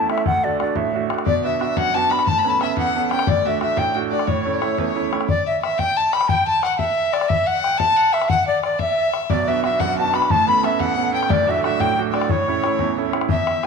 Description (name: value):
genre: celtic folk, Celtic jig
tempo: 120 BPM (dotted quarters)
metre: 6/8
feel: straight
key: A mixolydian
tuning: A4 = 440 Hz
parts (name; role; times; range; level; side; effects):
- wooden flute; melody; 0.0-13.7 s; C#5 to B5; -20 LUFS; left 1 dB; none
- bright grand piano; accompaniment; 0.0-5.3, 9.3-13.7 s; D1 to A4; -23 LUFS; right 13 dB; none
- bodhran; percussion; 0.1-13.7 s; none; -25 LUFS; left 5 dB; none
- clear fiddle; second line; 1.3-13.7 s; B4 to B5; -25 LUFS; left 8 dB; none
room: wet echo chamber reverb, RT60 2.2 s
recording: 1960s-style stereo with parts hard left and right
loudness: -17 LUFS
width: side -5 dB against mid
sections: 0.0-5.3 A section; 5.3-13.3 A section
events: none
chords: 0.3 D; 1.3 Bm; 2.3 Aadd9; 3.3 D; 4.3 A; 5.3 N.C.; 9.3 Bm; 10.3 Aadd9; 11.3 D; 12.3 A